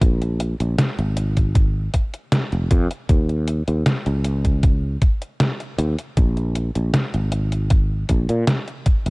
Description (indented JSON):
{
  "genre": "vaporwave",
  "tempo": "78 BPM",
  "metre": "4/4",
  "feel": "straight",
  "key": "unclear",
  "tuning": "A4 = 437 Hz",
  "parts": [
    { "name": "sustaining fretless electric bass", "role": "bass", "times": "0.0-9.1 s", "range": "F1 to Bb2", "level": "-20 LUFS", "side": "equal", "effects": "none" },
    { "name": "detuned 8-bit digital drum machine", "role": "drums", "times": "0.0-9.1 s", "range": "hi-hat, snare drum", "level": "-22 LUFS", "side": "equal", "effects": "none" },
    { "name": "electronic kick drum", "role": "drums", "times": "0.0-9.0 s", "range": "none", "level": "-17 LUFS", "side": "equal", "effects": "none" }
  ],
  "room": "digital ambience",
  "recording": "none",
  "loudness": "-18 LUFS",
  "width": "side -29 dB against mid",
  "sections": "0.0-9.1 A section",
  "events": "none",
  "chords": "none",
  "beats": "| 0.01 0.79 1.55 2.32 | 3.09 3.86 4.63 5.40 | 6.17 6.94 7.71 8.48"
}